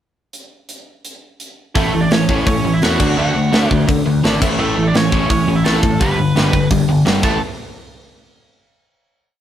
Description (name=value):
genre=punk rock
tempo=170 BPM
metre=4/4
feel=straight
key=A mixolydian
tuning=A4 = 440 Hz
part: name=tight metal drum kit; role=drums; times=0.3-7.3 s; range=crash cymbal, hi-hat, kick drum, snare drum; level=-19 LUFS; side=equal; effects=none
part: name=biting lead guitar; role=melody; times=1.8-7.4 s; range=A3 to B5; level=-21 LUFS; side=right 3 dB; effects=overdrive
part: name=overdriven electric guitar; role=riff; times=1.8-7.4 s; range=G2 to D4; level=-16 LUFS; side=left 1 dB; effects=none
part: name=growling picked electric bass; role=bass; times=1.8-7.4 s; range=G1 to D3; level=-21 LUFS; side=equal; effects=overdrive
room=light reverb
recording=band playing live in one room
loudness=-13 LUFS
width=side -10 dB against mid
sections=0.3-1.8 pickup bar; 1.8-7.4 verse; 7.4-8.8 final hit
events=drum fill 7.2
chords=0.3 N.C.; 1.8 A; 3.0 D; 4.4 A; 6.0 G; 7.2 A5; 7.4 N.C.